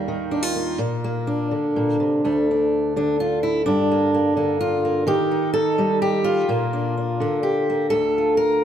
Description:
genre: folk, solo fingerstyle acoustic guitar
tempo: 126 BPM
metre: 3/4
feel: rubato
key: D minor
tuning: A4 = 440 Hz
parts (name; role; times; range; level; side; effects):
- fingerpicked steel-string acoustic guitar; solo; 0.0-8.6 s; D2 to Bb4; -19 LUFS; equal; none
room: moderate scoring stage reverb, RT60 1.9 s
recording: none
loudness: -19 LUFS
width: side -9 dB against mid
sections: 0.0-2.3 A section; 2.3-8.6 B section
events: none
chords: 0.0 Ebadd9; 0.8 Bb; 2.3 D5; 3.7 Gm7; 5.1 Eb; 6.5 Bb; 7.9 Dm

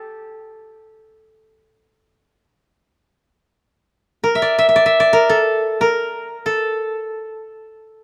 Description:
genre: japanese traditional, Japanese chamber music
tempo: free time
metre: none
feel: none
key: A in sen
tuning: A4 = 439 Hz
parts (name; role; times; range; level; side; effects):
- koto; solo; 0.0-8.0 s; G4 to E5; -18 LUFS; equal; none
room: little or no reverb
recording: close, detailed microphones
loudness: -17 LUFS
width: mono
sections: 0.0-8.0 A section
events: none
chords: none

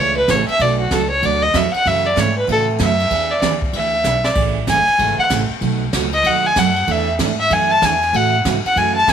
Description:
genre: country, western swing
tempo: 191 BPM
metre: 4/4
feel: swing 64% on 8ths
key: A major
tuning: A4 = 440 Hz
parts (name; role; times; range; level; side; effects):
- rich fiddle; melody; 0.0-9.1 s; F#4 to A5; -16 LUFS; equal; none
- picked steel-string acoustic guitar; accompaniment; 0.0-9.1 s; B2 to A4; -22 LUFS; right 14 dB; none
- upright bass; bass; 0.0-9.1 s; F#1 to A2; -22 LUFS; equal; none
- jazz brush drum kit; drums; 0.3-9.1 s; crash cymbal, hi-hat, kick drum, ride cymbal, snare drum; -24 LUFS; left 1 dB; none
room: light reverb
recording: 1960s-style stereo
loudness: -14 LUFS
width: side -8 dB against mid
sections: 0.0-9.1 A section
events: fiddle solo 0.0-9.1; drum fill 4.0-4.4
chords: 0.0 Amaj7; 0.6 Bm7; 1.9 F#m7; 3.1 E7; 4.4 Amaj7; 5.6 B7; 6.9 E7sus4; 8.1 A6

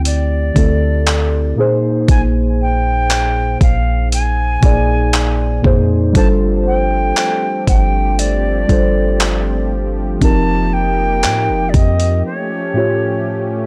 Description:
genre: contemporary R&B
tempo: 59 BPM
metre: 4/4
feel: straight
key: unclear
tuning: A4 = 441 Hz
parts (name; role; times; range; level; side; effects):
- muted felt-like synth keys; accompaniment; 0.0-13.7 s; A2 to D5; -20 LUFS; equal; chorus, phaser
- warm 808-style bass; bass; 0.0-12.2 s; F1 to A2; -19 LUFS; equal; none
- silver concert flute; melody; 0.1-13.7 s; C#5 to A5; -23 LUFS; equal; analog delay
- dusty soul sampler-style drum kit; drums; 0.1-12.2 s; handclaps, hi-hat, kick drum; -17 LUFS; equal; none
- warm analog pad; sustained chords; 6.2-13.7 s; F3 to G4; -27 LUFS; equal; chorus, tremolo, sidechain pumping
room: little or no reverb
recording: dry, gritty hardware recording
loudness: -15 LUFS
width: mono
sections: 0.0-13.7 A section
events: break 12.2-13.7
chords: 0.0 D9sus4; 1.6 Bb9sus4; 6.1 G9sus4; 10.2 F9sus4; 12.2 Aaug7

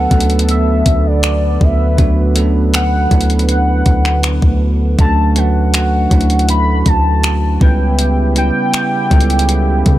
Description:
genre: contemporary R&B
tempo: 80 BPM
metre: 4/4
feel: straight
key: B minor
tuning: A4 = 440 Hz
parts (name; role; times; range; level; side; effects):
- warm velvety synth lead; melody; 0.0-10.0 s; D5 to B5; -19 LUFS; left 1 dB; chorus
- bell-like tine electric piano; accompaniment; 0.0-10.0 s; F#3 to B4; -19 LUFS; right 4 dB; none
- warm analog pad; sustained chords; 0.0-10.0 s; C#3 to B4; -22 LUFS; left 1 dB; chorus
- long sustained 808-style bass; bass; 0.0-10.0 s; C#2 to C#3; -14 LUFS; equal; none
- crisp 8-bit digital drum machine; drums; 0.1-10.0 s; finger snaps, hi-hat, kick drum; -14 LUFS; equal; none
room: digital ambience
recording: none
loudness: -11 LUFS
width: side -14 dB against mid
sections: 0.0-10.0 A section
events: none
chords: 0.0 Bm7/D; 7.6 C#m7b5

